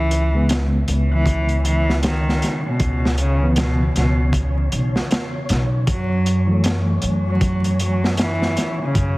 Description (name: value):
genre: trip hop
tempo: 78 BPM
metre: 4/4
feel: swing 60% on 16ths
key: C# minor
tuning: A4 = 441 Hz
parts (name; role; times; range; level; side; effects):
- warm cello; melody; 0.0-9.2 s; B2 to F#3; -23 LUFS; equal; tape echo
- upright bass; bass; 0.0-9.2 s; B1 to F#2; -20 LUFS; equal; none
- wind-like tuned noise texture; texture; 0.8-9.2 s; C#4 to C#5; -33 LUFS; equal; built-in reverb
- crunchy breakbeat drum kit; drums; 0.1-9.2 s; hi-hat, kick drum, snare drum; -22 LUFS; equal; none
- reed electric piano; accompaniment; 0.3-9.2 s; C#3 to B3; -25 LUFS; equal; tremolo
room: little or no reverb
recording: heavily compressed radio sound, vinyl crackle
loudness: -17 LUFS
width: side -21 dB against mid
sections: 0.0-9.2 A section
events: none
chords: 0.0 C#m7; 5.9 F#m7